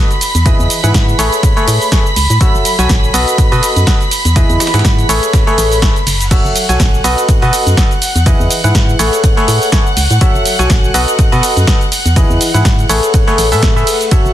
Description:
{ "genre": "piano house", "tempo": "123 BPM", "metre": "4/4", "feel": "swing 56% on 16ths", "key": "unclear", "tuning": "A4 = 442 Hz", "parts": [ { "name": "rich studio violin section", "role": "sustained chords", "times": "0.0-14.3 s", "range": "F#5 to B6", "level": "-19 LUFS", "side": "right 1 dB", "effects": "sidechain pumping" }, { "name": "barking FM electric piano", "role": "riff", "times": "0.0-14.3 s", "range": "E3 to G#5", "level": "-15 LUFS", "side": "left 1 dB", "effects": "chorus, sidechain pumping, ping-pong delay" }, { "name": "breakbeat sampler-style drum kit", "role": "drums", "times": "0.1-14.2 s", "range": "hi-hat, snare drum", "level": "-25 LUFS", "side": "left 1 dB", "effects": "none" }, { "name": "punchy analog drum machine", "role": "drums", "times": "0.1-14.3 s", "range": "crash cymbal, hi-hat, ride cymbal, shaker, snare drum", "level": "-18 LUFS", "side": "right 1 dB", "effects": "small room ambience" }, { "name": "organ-like FM bass", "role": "bass", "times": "0.3-14.3 s", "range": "F#1 to B2", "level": "-14 LUFS", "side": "equal", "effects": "tube saturation, sidechain pumping" }, { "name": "electronic kick drum", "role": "drums", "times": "0.5-14.2 s", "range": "none", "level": "-12 LUFS", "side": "equal", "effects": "small room ambience" } ], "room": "little or no reverb", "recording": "dense, heavily limited modern master", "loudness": "-9 LUFS", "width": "side -12 dB against mid", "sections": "0.0-14.3 A section", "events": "none", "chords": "0.5 Emaj7; 1.2 Amaj9; 2.4 F#m7; 3.1 B7; 4.4 Emaj7; 5.1 Amaj9; 6.3 F#m7; 7.0 B7; 8.3 Emaj7; 9.0 Amaj9; 10.2 F#m7; 10.9 B7; 12.2 Emaj7; 12.9 Amaj9", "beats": "| 0.46 0.94 1.43 1.92 | 2.41 2.90 3.38 3.87 | 4.36 4.85 5.33 5.82 | 6.31 6.80 7.29 7.77 | 8.26 8.75 9.24 9.72 | 10.21 10.70 11.19 11.68 | 12.16 12.65 13.14 13.63 | 14.12" }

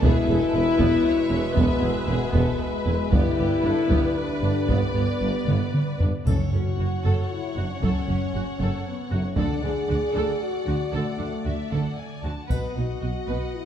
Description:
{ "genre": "cinematic, epic orchestral film score", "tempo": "116 BPM", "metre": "3/4", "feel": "straight", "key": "F# minor", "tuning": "A4 = 440 Hz", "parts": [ { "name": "rich symphonic violin section", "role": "melody", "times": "0.0-13.7 s", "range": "G4 to A5", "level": "-37 LUFS", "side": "left 4 dB", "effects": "none" }, { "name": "clear symphonic violin section", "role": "second line", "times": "0.0-13.7 s", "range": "B4 to E5", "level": "-36 LUFS", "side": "left 3 dB", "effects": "none" }, { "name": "rich symphonic viola section", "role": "accompaniment", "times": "0.0-13.5 s", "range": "B3 to B4", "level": "-32 LUFS", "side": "right 1 dB", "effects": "none" }, { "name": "warm French horn section", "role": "sustained chords", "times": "0.0-13.7 s", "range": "G#3 to G#4", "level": "-27 LUFS", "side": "left 3 dB", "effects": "none" }, { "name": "warm trombone section", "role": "sustained chords", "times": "0.0-6.0 s", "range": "B2 to G#3", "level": "-34 LUFS", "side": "right 2 dB", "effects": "none" }, { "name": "clear symphonic double bass section", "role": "bass", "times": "0.0-13.4 s", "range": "E1 to D2", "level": "-29 LUFS", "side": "right 2 dB", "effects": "none" }, { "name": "clear tuba", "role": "bass", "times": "0.0-6.1 s", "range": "E1 to G1", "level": "-31 LUFS", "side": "right 3 dB", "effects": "none" }, { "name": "dark symphonic cello section", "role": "bass", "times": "0.0-13.4 s", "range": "E2 to D3", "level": "-28 LUFS", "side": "right 2 dB", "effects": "none" }, { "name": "taiko ensemble", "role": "drums", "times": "0.0-9.9, 12.5-13.5 s", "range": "none", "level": "-26 LUFS", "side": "equal", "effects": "none" }, { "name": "timpani", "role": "percussion", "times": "6.3-7.0 s", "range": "F#2", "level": "-29 LUFS", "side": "left 1 dB", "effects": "none" }, { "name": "triangle", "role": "percussion", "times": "6.3-7.3, 12.5-13.5 s", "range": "none", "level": "-54 LUFS", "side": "equal", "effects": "none" } ], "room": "wet scoring stage reverb, RT60 1.9 s", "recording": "dark, warm production", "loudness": "-21 LUFS", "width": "side -9 dB against mid", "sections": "0.0-6.3 A section; 6.3-13.7 B section", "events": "drum fill 5.5-6.3", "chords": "0.0 E; 3.1 G; 6.3 F#m; 9.4 D; 12.5 B", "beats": "| 0.04 0.54 1.05 | 1.57 2.08 2.60 | 3.12 3.64 4.16 | 4.68 5.21 5.74 | 6.27 6.79 7.31 | 7.83 8.35 8.86 | 9.37 9.89 10.41 | 10.93 11.45 11.97 | 12.50 13.02 13.54" }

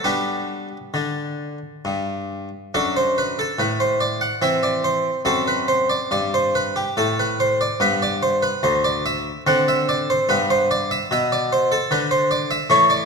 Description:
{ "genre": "classical, baroque-style suite movement for harpsichord", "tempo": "66-76 BPM", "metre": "3/4", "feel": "rubato", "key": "G major", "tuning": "A4 = 441 Hz", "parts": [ { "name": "harpsichord", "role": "solo", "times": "0.0-13.1 s", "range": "D2 to F#5", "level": "-18 LUFS", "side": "equal", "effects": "none" } ], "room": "wet concert hall reverb, RT60 1.8 s", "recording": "dark, warm production", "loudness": "-18 LUFS", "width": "side -4 dB against mid", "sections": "0.0-2.8 A section; 2.8-13.1 A section", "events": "none", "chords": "0.0 G; 2.8 D/F#; 4.4 C/E; 5.3 Am13/F#; 7.8 G; 9.5 D9; 10.3 G", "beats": "| 0.05 0.95 1.86 | 2.75 3.60 4.43 | 5.26 6.12 6.97 | 7.81 8.63 9.47 | 10.29 11.11 11.91 | 12.70" }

